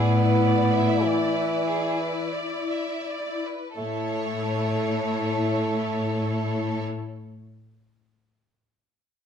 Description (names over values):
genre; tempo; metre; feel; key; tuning
classical, slow romantic movement for symphony orchestra; 39-53 BPM; 3/4; rubato; unclear; A4 = 440 Hz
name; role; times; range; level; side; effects
clear studio violin section; melody; 0.0-6.8 s; C#5 to D5; -33 LUFS; equal; none
rich studio violin section; second line; 0.0-6.8 s; G#4 to E5; -33 LUFS; right 1 dB; none
clear bassoon; accompaniment; 0.0-6.8 s; E3 to B3; -28 LUFS; right 4 dB; none
rich studio viola section; accompaniment; 0.0-6.8 s; E4; -29 LUFS; left 4 dB; none
clear studio cello section; bass; 0.0-6.8 s; A2; -26 LUFS; left 2 dB; none
room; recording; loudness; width
wet stone room reverb, RT60 1.1 s; dark, warm production; -23 LUFS; side -8 dB against mid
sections
0.0-3.8 A section; 3.8-7.7 B section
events
slowing down 0.0-3.8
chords
0.0 E7(no3)/A; 3.8 A